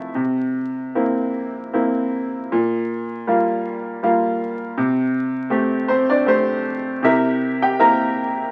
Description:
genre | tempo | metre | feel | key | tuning
classical, lyrical solo piano | 78 BPM | 3/4 | uneven beats, rubato | unclear | A4 = 439 Hz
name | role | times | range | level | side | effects
bright grand piano | solo | 0.0-8.5 s | Bb2 to Bb5 | -20 LUFS | equal | none
room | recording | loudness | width
moderate studio reverb, RT60 0.6 s | very old 78 rpm record, vinyl crackle | -20 LUFS | mono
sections
0.0-8.5 A section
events
none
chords
0.1 C7; 2.5 Gm7/Bb; 4.8 Am7/C; 7.0 C7

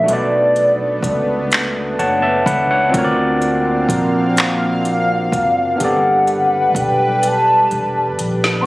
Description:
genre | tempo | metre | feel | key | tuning
slow six-eight R&B | 42 BPM (dotted quarters) | 6/8 | straight | unclear | A4 = 441 Hz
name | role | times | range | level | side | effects
gliding portamento lead | melody | 0.0-8.7 s | D5 to C#6 | -16 LUFS | equal | chorus, tape echo
overdriven tine electric piano | accompaniment | 0.0-8.7 s | B3 to B5 | -18 LUFS | equal | none
lush unison pad | sustained chords | 0.0-8.7 s | G3 to E#5 | -22 LUFS | right 1 dB | chorus
mellow fretless electric bass | bass | 0.0-8.6 s | E1 to D2 | -24 LUFS | equal | none
smooth R&B drum kit | drums | 0.1-8.7 s | handclaps, hi-hat, kick drum, snare drum | -19 LUFS | equal | none
room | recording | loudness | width
light reverb | recorded on a phone in the room, studio reverb, compression | -13 LUFS | side -18 dB against mid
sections
0.0-8.7 A section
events
tine electric piano fill 1.5-2.9; drum fill 7.2-8.7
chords
0.0 Bm9; 2.9 D7alt; 5.8 Gmaj7

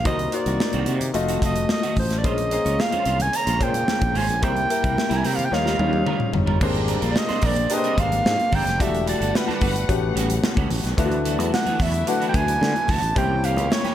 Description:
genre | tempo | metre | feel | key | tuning
polished 1980s jazz-funk pop | 110 BPM | 4/4 | straight | unclear | A4 = 441 Hz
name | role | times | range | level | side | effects
warm soprano saxophone | melody | 0.0-13.9 s | B4 to Bb5 | -25 LUFS | right 2 dB | none
warm grand piano | accompaniment | 0.0-13.9 s | G3 to F5 | -26 LUFS | left 5 dB | wide subtle chorus
semi-hollow electric guitar | riff | 0.0-13.9 s | Eb3 to Db5 | -31 LUFS | right 7 dB | ensemble chorus
sustaining fretless electric bass | bass | 0.0-13.7 s | E1 to D3 | -25 LUFS | equal | none
modern studio drum kit | drums | 0.1-13.9 s | crash cymbal, hi-hat, kick drum, snare drum, toms | -25 LUFS | equal | gated reverb
congas | percussion | 0.1-13.9 s | none | -37 LUFS | left 2 dB | none
warm studio string section | sustained chords | 2.2-13.9 s | C3 to F#5 | -34 LUFS | left 2 dB | none
room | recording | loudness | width
light reverb, studio reverb | none | -19 LUFS | side -11 dB against mid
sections
0.0-6.6 A section; 6.6-13.9 B section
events
drum fill 5.5-6.6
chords
0.1 Cm7b5; 1.1 F7b9; 2.2 Bbm9; 4.4 C7; 5.5 Eb9; 6.6 Abmaj9#11; 8.8 Em11; 9.9 A13; 11.0 D69; 13.2 C7b9

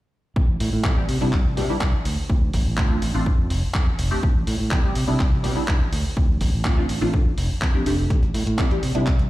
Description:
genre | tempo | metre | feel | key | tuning
filtered disco house | 124 BPM | 4/4 | straight | A minor | A4 = 439 Hz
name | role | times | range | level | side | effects
modern bright fingered electric bass | bass | 0.4-9.3 s | F1 to C3 | -24 LUFS | equal | sidechain pumping, low-pass filter
electronic kick drum | drums | 0.4-9.2 s | none | -21 LUFS | equal | none
dusty soul sampler-style drum kit | drums | 0.6-9.3 s | handclaps, hi-hat | -30 LUFS | equal | sidechain pumping on hats
funky polysynth comp | accompaniment | 0.8-9.0 s | G3 to G4 | -27 LUFS | equal | chorus, phaser, cassette tape, sidechain pumping, low-pass filter
room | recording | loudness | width
light reverb, digital ambience | played on a big sound system in a bare room, large studio reverb | -19 LUFS | side -16 dB against mid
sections
0.4-9.3 A section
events
none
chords
0.4 Am9; 1.1 Cmaj9; 2.1 Amadd11; 3.3 N.C.; 4.2 Am9; 5.0 Cmaj9; 5.9 Amadd11; 7.1 F6; 8.1 Am9

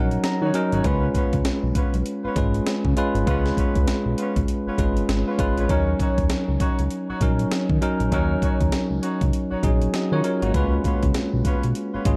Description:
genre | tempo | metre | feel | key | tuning
R&B, new jack swing | 99 BPM | 4/4 | swing 60% on 16ths | Eb minor | A4 = 441 Hz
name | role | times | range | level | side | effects
bell-like tine electric piano | accompaniment | 0.0-12.2 s | Gb3 to Bb5 | -26 LUFS | equal | none
fat analog bass | bass | 0.0-12.2 s | Ab1 to Eb3 | -26 LUFS | equal | none
breakbeat sampler-style drum kit | drums | 0.1-12.2 s | hi-hat, kick drum, snare drum | -27 LUFS | equal | none
mellow horn section | stabs | 0.4-12.1 s | Cb4 to Db5 | -34 LUFS | equal | delay
room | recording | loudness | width
light reverb | dark, warm production | -22 LUFS | mono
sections
0.0-12.2 A section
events
tine electric piano fill 0.0-0.8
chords
0.0 Ebm7; 0.8 Db7; 5.7 Ebm7; 10.5 Db7

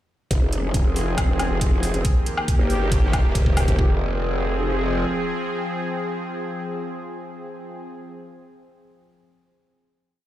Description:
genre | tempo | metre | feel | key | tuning
heavy wobble dubstep | 138 BPM | 4/4 | half-time | F minor | A4 = 440 Hz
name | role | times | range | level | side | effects
supersaw pad | sustained chords | 0.3-7.9 s | Eb3 to Ab4 | -27 LUFS | equal | sidechain pumping
growl bass | bass | 0.3-5.1 s | Eb1 to G1 | -23 LUFS | equal | chorus, overdrive
electronic hi-hat and woodblock | drums | 0.3-3.8 s | none | -30 LUFS | left 1 dB | none
electronic kick drum | drums | 0.3-3.9 s | none | -19 LUFS | equal | none
room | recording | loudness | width
digital ambience | played on a big sound system in a bare room, large studio reverb | -20 LUFS | side -13 dB against mid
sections
0.3-3.8 build; 3.8-7.3 final chord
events
build-up 0.3-3.8; drum fill 2.0-3.8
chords
0.3 Fm; 2.0 Eb; 3.8 Fm

